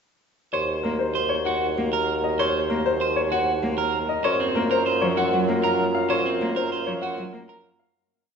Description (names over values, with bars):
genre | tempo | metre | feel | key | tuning
classical, minimalist pattern music | 194 BPM | 6/4 | straight | Eb dorian | A4 = 440 Hz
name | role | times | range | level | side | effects
clear baby grand piano | melody | 0.5-8.0 s | Bb4 to Bb5 | -26 LUFS | left 4 dB | none
warm French horn | second line | 0.5-7.8 s | F4 to Gb4 | -33 LUFS | right 3 dB | none
electric guitar at the edge of break-up | arpeggios | 0.5-7.7 s | C4 to C5 | -26 LUFS | right 5 dB | none
mellow bassoon | bass | 0.5-7.9 s | Eb2 to Gb2 | -26 LUFS | equal | none
warm cello | accompaniment | 0.8-7.5 s | F3 to Bb3 | -31 LUFS | equal | none
room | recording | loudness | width
wet church reverb, RT60 3.1 s | recorded in a church or concert hall, nothing above 7.8 kHz | -21 LUFS | side -6 dB against mid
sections
0.5-8.0 A section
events
fade-out 6.1-8.0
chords
0.5 Ebm7; 4.2 Gbmaj7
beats
| 0.54 0.84 1.15 1.46 1.77 2.08 | 2.39 2.70 3.01 3.32 3.63 3.94 | 4.25 4.56 4.87 5.17 5.48 5.79 | 6.10 6.41 6.72 7.03 7.34 7.65